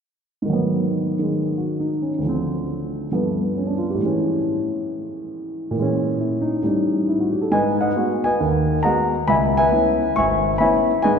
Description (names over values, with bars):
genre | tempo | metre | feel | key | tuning
solo jazz | 136 BPM | 4/4 | swing 65% on 8ths | G# minor | A4 = 436 Hz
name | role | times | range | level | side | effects
dark concert grand piano | solo | 0.4-11.2 s | G#1 to C#6 | -18 LUFS | equal | none
room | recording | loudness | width
wet church reverb, RT60 3.8 s | recorded in a church or concert hall | -18 LUFS | side -6 dB against mid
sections
0.5-7.5 A section; 7.5-11.2 B section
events
none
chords
0.5 G#m7; 2.2 Dm7; 3.1 G9; 4.0 Amaj7; 5.8 A#m7b5; 6.6 A7#11; 7.5 G#m7; 9.3 C#m7